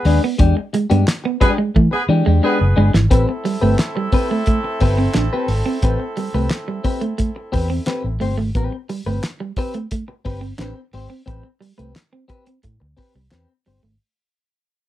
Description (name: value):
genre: funk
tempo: 88 BPM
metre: 4/4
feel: straight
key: A minor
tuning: A4 = 439 Hz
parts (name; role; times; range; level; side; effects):
- warm horn section; second line; 0.0-8.2 s; A3 to B4; -24 LUFS; right 1 dB; none
- clean electric guitar; accompaniment; 0.0-13.9 s; G#3 to C5; -22 LUFS; left 4 dB; wide subtle chorus
- clean electric guitar; riff; 0.1-13.9 s; E3 to D4; -22 LUFS; right 5 dB; none
- vintage muted fingered electric bass; bass; 0.1-14.0 s; F#1 to E3; -17 LUFS; equal; none
- cloth-damped thuddy drum kit; drums; 0.1-13.8 s; handclaps, hi-hat, kick drum, snare drum; -19 LUFS; equal; none
room: little or no reverb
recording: dry, close 1970s-style studio recording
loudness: -16 LUFS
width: side -13 dB against mid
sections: 0.0-3.1 A section; 3.1-14.0 B section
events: drum fill 1.8-3.1; fade-out 3.1-14.0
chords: 0.0 E7#9; 3.1 Am9